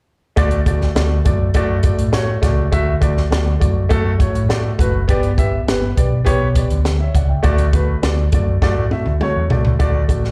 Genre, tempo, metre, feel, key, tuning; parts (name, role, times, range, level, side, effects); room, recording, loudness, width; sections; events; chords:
uptempo 1960s-style soul; 102 BPM; 4/4; straight; D major; A4 = 441 Hz
warm upright piano; accompaniment; 0.4-10.3 s; A3 to G5; -23 LUFS; equal
picked electric bass; bass; 0.4-10.3 s; F#1 to A2; -20 LUFS; equal
compact cocktail drum kit; drums; 0.4-10.3 s; hi-hat, kick drum, snare drum, toms; -20 LUFS; equal
small room ambience; live gig heard through the venue's PA, club reverb; -17 LUFS; mono
0.4-9.8 A section
drum fill 8.6-9.8
0.4 D; 5.1 G; 7.4 D